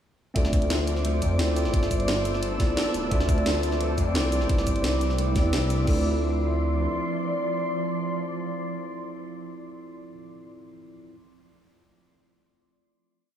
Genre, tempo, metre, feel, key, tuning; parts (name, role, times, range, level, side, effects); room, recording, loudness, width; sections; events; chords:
liquid drum and bass; 174 BPM; 4/4; straight; D dorian; A4 = 437 Hz
mellow tine electric piano; accompaniment; 0.3-11.2 s; B3 to E5; -30 LUFS; equal; vintage 12-bit sampler grit, diffuse ambient delay
glassy FM pad; sustained chords; 0.9-9.4 s; F3 to E6; -32 LUFS; right 1 dB; ensemble chorus, built-in reverb, sidechain pumping
concert harp; arpeggios; 0.4-8.7 s; A3 to D5; -35 LUFS; equal; tape echo
dark detuned saw bass; bass; 0.4-6.9 s; D1 to F2; -26 LUFS; equal
drum and bass drum kit; drums; 0.4-5.9 s; cabasa, crash cymbal, hi-hat, snare drum; -31 LUFS; equal; small room reverb
electronic kick drum; drums; 0.4-5.9 s; -25 LUFS; equal; small room reverb
moderate lush hall reverb, RT60 1.9 s, digital ambience; dreamy mix soaked in reverb, studio reverb; -23 LUFS; side -10 dB against mid
0.4-5.9 drop; 5.9-8.6 final chord
drop 0.4-5.9
0.4 Dm7; 1.7 G13; 3.1 Dm7; 4.3 Cmaj9; 5.9 Dm7